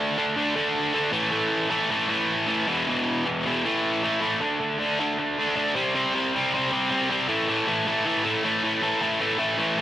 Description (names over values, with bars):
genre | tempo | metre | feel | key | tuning
punk | 156 BPM | 4/4 | straight | unclear | A4 = 440 Hz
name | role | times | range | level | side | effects
distorted electric guitar | solo | 0.0-9.8 s | E2 to D4 | -22 LUFS | equal | overdrive, cassette tape
room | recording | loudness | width
little or no reverb | home recording on cassette | -22 LUFS | side -12 dB against mid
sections
0.0-4.4 A section; 4.4-9.8 B section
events
none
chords
0.0 D5; 1.1 A5; 2.7 E5; 3.6 A5; 4.4 D5; 5.8 C5; 7.3 A5